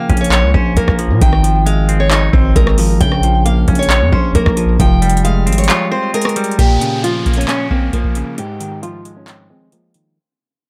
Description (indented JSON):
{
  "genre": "hip hop, trap",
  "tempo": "134 BPM",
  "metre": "4/4",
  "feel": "half-time",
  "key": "Bb dorian",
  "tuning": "A4 = 440 Hz",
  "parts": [
    { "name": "picked old ladder-braced acoustic guitar", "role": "melody", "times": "0.0-10.1 s", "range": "Bb3 to G5", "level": "-22 LUFS", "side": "equal", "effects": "low-pass filter, tape echo" },
    { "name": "semi-hollow electric guitar", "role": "accompaniment", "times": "0.0-10.2 s", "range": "Ab2 to Db5", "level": "-21 LUFS", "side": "equal", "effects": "low-pass filter" },
    { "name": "distorted 808-style bass", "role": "bass", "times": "0.1-5.7 s", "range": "F1 to Bb2", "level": "-16 LUFS", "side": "equal", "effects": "distortion" },
    { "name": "booming analog drum machine", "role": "drums", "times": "0.1-10.0 s", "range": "handclaps, hi-hat, kick drum, rim click", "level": "-18 LUFS", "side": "equal", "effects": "overdrive" },
    { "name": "downlifter", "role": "sound effects", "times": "6.6-10.2 s", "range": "none", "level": "-29 LUFS", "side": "equal", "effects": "none" }
  ],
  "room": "light reverb",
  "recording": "echo-heavy mix",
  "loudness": "-13 LUFS",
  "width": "mono",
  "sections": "0.0-6.6 A section; 6.6-10.2 B section",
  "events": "break 5.7-6.6, 8.4-10.2; fade-out 6.6-10.2; filter sweep 6.6-10.2",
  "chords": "0.0 Bbm; 1.2 Ab6; 3.0 Bbm; 4.8 Fmadd9; 6.6 Bbm; 8.4 Ab6",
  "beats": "0.32 0.77 | 1.22 1.66 2.11 2.56 | 3.01 3.45 3.90 4.35 | 4.80 5.25 5.69 6.14 | 6.59 7.04 7.48 7.93 | 8.38 8.83 9.27 9.72"
}